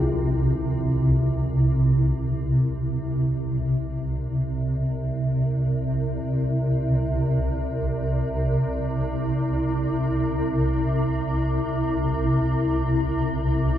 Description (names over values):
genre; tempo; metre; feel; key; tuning
dark ambient drone; free time; none; none; C minor; A4 = 440 Hz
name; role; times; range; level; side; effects
carillon bells; arpeggios; 0.0-1.3 s; Eb3; -41 LUFS; left 2 dB; none
swarming drone; drone; 0.0-13.8 s; C2 to C3; -21 LUFS; equal; built-in reverb
bronze singing bowl; texture; 0.0-13.8 s; G4 to G5; -50 LUFS; right 3 dB; none
room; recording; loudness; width
wet huge ambient reverb, RT60 6.9 s; none; -21 LUFS; side -11 dB against mid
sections
0.1-13.8 A section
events
none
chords
0.1 Cm